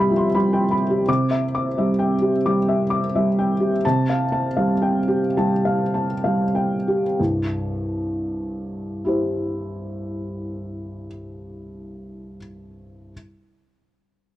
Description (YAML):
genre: neoclassical minimalist piano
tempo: 61-88 BPM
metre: 4/4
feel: rubato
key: C major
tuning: A4 = 441 Hz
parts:
  - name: felt-muted upright piano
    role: solo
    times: 0.0-13.1 s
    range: C2 to D6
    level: -20 LUFS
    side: equal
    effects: none
room: small room ambience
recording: dry, close 1970s-style studio recording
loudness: -19 LUFS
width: side -14 dB against mid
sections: 0.0-1.1 A section; 1.1-7.2 B section; 7.2-10.9 C section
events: slowing down 0.0-7.2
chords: 0.0 Em/C; 1.1 Cadd9; 3.8 Fadd9/C; 7.2 C